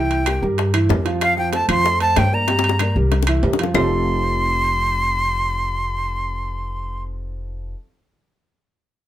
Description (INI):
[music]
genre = Afro-Cuban jazz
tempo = 190 BPM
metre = 4/4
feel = straight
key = F mixolydian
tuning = A4 = 440 Hz
[part]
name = breathy bright jazz flute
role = melody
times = 0.0-7.0 s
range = F5 to C6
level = -20 LUFS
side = equal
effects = none
[part]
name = dark concert grand piano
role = accompaniment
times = 0.0-7.7 s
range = E3 to G5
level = -24 LUFS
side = right 2 dB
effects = none
[part]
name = upright bass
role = bass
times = 0.0-7.7 s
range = F1 to G2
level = -22 LUFS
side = equal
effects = none
[part]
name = bongos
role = percussion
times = 0.1-3.8 s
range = none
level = -25 LUFS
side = left 8 dB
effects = none
[part]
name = timbales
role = percussion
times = 0.1-3.8 s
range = none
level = -27 LUFS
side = right 6 dB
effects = none
[part]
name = claves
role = percussion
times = 0.3-3.8 s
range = none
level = -27 LUFS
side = left 5 dB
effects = none
[sound]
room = moderate club reverb, RT60 0.7 s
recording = minimal, uncompressed stereo recording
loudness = -17 LUFS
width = side -12 dB against mid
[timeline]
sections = 0.0-3.7 A section; 3.7-6.3 B section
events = drum fill 2.5-3.7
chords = 0.0 C7; 1.2 Fadd9; 2.5 Gm; 3.1 C7; 3.7 F9